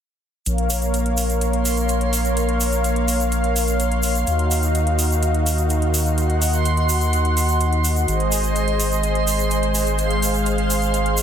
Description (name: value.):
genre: progressive house.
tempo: 126 BPM.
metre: 4/4.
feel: straight.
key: Bb minor.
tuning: A4 = 441 Hz.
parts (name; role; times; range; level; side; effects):
lush unison pad; sustained chords; 0.5-11.2 s; Eb3 to Gb5; -22 LUFS; equal; chorus.
saturated sub bass; bass; 0.5-11.2 s; Ab1 to Eb2; -21 LUFS; equal; tube saturation.
electronic hi-hat; drums; 0.5-11.2 s; none; -29 LUFS; equal; overdrive.
egg shaker; percussion; 0.5-11.2 s; none; -28 LUFS; right 3 dB; none.
backwards swelling texture; texture; 1.2-11.2 s; C6; -29 LUFS; right 4 dB; built-in reverb.
room: little or no reverb.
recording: dense, heavily limited modern master.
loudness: -17 LUFS.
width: side -8 dB against mid.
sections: 0.5-11.2 A section.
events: none.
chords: 0.5 Bbm; 4.3 Ebmadd9; 8.1 Ab.